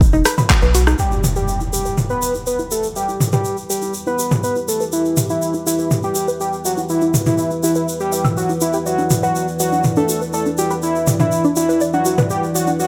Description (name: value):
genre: melodic techno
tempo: 122 BPM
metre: 4/4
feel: straight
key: E minor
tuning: A4 = 440 Hz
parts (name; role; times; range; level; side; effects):
- tight sequencer bass; bass; 0.0-1.0 s; E1 to B1; -18 LUFS; equal; sidechain pumping
- electronic kick drum; drums; 0.0-0.6 s; none; -16 LUFS; equal; none
- egg shaker; percussion; 0.0-12.9 s; none; -28 LUFS; equal; none
- warbly dusty pluck; arpeggios; 0.1-12.8 s; D4 to E6; -25 LUFS; equal; chorus, vintage 12-bit sampler grit, sidechain pumping, dub echo
- deep house drum kit; drums; 0.3-12.3 s; handclaps, hi-hat, rim click, toms; -20 LUFS; equal; none
- fat analog lead; melody; 1.0-12.9 s; E4 to B4; -22 LUFS; equal; chorus, cassette tape, sidechain pumping, digital delay
- dark analog pad; sustained chords; 1.0-12.9 s; E3 to D5; -27 LUFS; equal; chorus, sidechain pumping
- impact; sound effects; 1.0-3.0 s; none; -27 LUFS; equal; none
room: moderate lush hall reverb, RT60 2.0 s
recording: none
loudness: -18 LUFS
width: mono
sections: 1.0-12.9 A section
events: band accent 0.5; impact 1.0-3.0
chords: 0.0 B5/E; 1.0 Em; 8.9 Bm/E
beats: 0.01 0.50 | 0.99 1.48 1.98 2.47 | 2.96 3.45 3.94 4.43 | 4.93 5.42 5.91 6.40 | 6.89 7.38 7.88 8.37 | 8.86 9.35 9.84 10.34 | 10.83 11.32 11.81 12.30 | 12.79